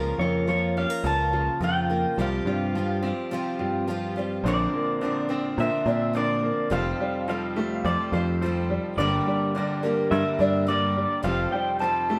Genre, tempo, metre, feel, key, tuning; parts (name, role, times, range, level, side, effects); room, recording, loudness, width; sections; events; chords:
folk; 106 BPM; 4/4; straight; A4 = 439 Hz
fingerpicked steel-string acoustic guitar; accompaniment; 0.0-6.7 s; G2 to Bb4; -36 LUFS; equal
picked twelve-string acoustic guitar; accompaniment; 0.0-12.2 s; G2 to Bb4; -35 LUFS; equal
clear upright piano; arpeggios; 0.0-12.2 s; D3 to F4; -31 LUFS; equal
picked electric bass; bass; 0.0-11.5 s; F1 to Bb2; -29 LUFS; equal
electric guitar through a small old amp; melody; 0.2-12.2 s; C5 to A5; -30 LUFS; equal; harmonic tremolo
clear concert grand piano; accompaniment; 4.4-12.2 s; F1 to D5; -36 LUFS; equal
wet studio reverb, RT60 0.7 s; band playing live in one room; -25 LUFS; mono
0.0-4.4 A section; 4.4-12.2 B section
0.0 Bbm/Db; 2.2 Csus4; 4.4 Bbadd9; 6.7 Fadd9; 9.0 Gm; 11.2 Fadd9